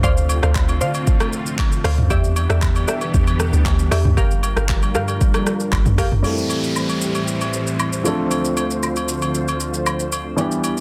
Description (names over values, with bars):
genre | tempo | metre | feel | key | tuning
amapiano | 116 BPM | 4/4 | straight | unclear | A4 = 440 Hz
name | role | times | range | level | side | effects
string machine, cellos | sustained chords | 0.0-10.8 s | D2 to D5 | -27 LUFS | equal | ensemble chorus, sidechain pumping, low-pass filter
glassy wavetable pluck | stabs | 0.0-6.1 s | G4 to F5 | -28 LUFS | equal | chorus, digital delay
deep log drum bass | bass | 0.0-6.2 s | G1 to D3 | -21 LUFS | equal | none
deep house drum kit | drums | 0.0-10.8 s | handclaps, hi-hat, kick drum, rim click, shaker, toms | -22 LUFS | equal | overdrive
agogo bells and woodblock | percussion | 0.0-10.8 s | none | -30 LUFS | equal | none
warm concert grand piano | accompaniment | 6.2-10.8 s | E3 to A4 | -25 LUFS | equal | low-pass filter
downlifter | sound effects | 6.2-10.4 s | none | -32 LUFS | equal | none
room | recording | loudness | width
little or no reverb | dense, heavily limited modern master | -19 LUFS | mono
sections
0.0-6.2 A section; 6.2-10.8 B section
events
drop 0.0-6.2; filter sweep 6.2-10.8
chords
0.0 Dm7; 2.1 Em7; 4.2 Gm7; 6.2 Am7; 8.1 Dm7